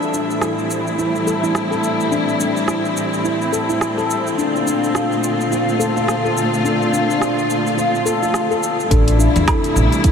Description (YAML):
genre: organic downtempo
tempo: 106 BPM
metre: 4/4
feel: swing 59% on 16ths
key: unclear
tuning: A4 = 442 Hz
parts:
  - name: warm symphonic string section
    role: sustained chords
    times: 0.0-10.1 s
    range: A2 to F4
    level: -20 LUFS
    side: equal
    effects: sidechain pumping, low-pass filter
  - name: deep house drum kit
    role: drums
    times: 0.0-10.1 s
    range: hi-hat, rim click, shaker, woodblock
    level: -26 LUFS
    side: right 1 dB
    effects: none
  - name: bronze singing bowl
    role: texture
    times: 0.0-10.1 s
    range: A4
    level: -32 LUFS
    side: equal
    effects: none
  - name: handpan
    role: arpeggios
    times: 0.1-10.1 s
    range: D4 to A4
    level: -20 LUFS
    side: left 2 dB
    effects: low-pass filter, diffuse ambient delay
  - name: upright bass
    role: bass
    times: 8.9-9.9 s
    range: A1 to E2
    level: -16 LUFS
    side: right 1 dB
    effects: sidechain pumping
  - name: electronic kick drum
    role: drums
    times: 8.9-10.1 s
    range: none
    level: -16 LUFS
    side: right 1 dB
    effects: none
room: wet huge ambient reverb, RT60 7.3 s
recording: dreamy mix soaked in reverb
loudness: -16 LUFS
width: side -7 dB against mid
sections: 0.0-8.9 A section; 8.9-10.1 B section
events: none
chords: 0.0 Am7; 4.4 Bbmaj9; 8.9 Am7